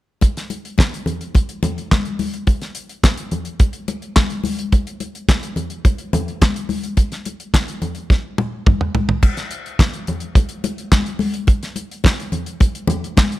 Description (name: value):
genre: disco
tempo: 107 BPM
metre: 4/4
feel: straight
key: none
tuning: none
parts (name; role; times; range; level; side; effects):
- damped 70s drum kit; drums; 0.2-13.4 s; crash cymbal, handclaps, hi-hat, kick drum, snare drum, toms; -16 LUFS; equal; none
- congas; percussion; 0.2-13.3 s; none; -24 LUFS; left 3 dB; none
room: light reverb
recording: none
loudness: -17 LUFS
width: side -16 dB against mid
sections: 0.2-9.2 A section; 9.2-13.4 B section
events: drum fill 8.1-9.2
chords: none